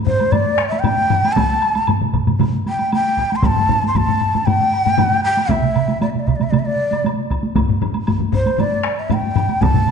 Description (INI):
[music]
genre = japanese traditional, taiko drum ensemble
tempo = 116 BPM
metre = 4/4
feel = straight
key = unclear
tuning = A4 = 438 Hz
[part]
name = breathy shakuhachi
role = melody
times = 0.1-9.9 s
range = C5 to C6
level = -18 LUFS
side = equal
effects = none
[part]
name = taiko ensemble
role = percussion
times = 0.1-9.9 s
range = none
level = -19 LUFS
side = left 3 dB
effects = none
[part]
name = solo taiko drums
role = percussion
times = 0.2-9.7 s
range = none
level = -22 LUFS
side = right 2 dB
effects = none
[part]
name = woodblock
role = percussion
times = 0.2-9.9 s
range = none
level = -32 LUFS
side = equal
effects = none
[part]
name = taiko ensemble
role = percussion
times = 1.4-9.7 s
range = none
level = -22 LUFS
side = equal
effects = none
[part]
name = taiko ensemble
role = percussion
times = 1.9-9.9 s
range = none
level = -21 LUFS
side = right 8 dB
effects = none
[sound]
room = wet recital hall reverb, RT60 1.5 s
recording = dark, warm production, nothing above 10.7 kHz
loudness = -15 LUFS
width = side -6 dB against mid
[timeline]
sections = 0.0-9.9 A section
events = none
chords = none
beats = 0.34 0.85 | 1.37 1.89 2.40 2.92 | 3.44 3.95 4.47 4.98 | 5.50 6.01 6.53 7.04 | 7.56 8.07 8.59 9.11 | 9.62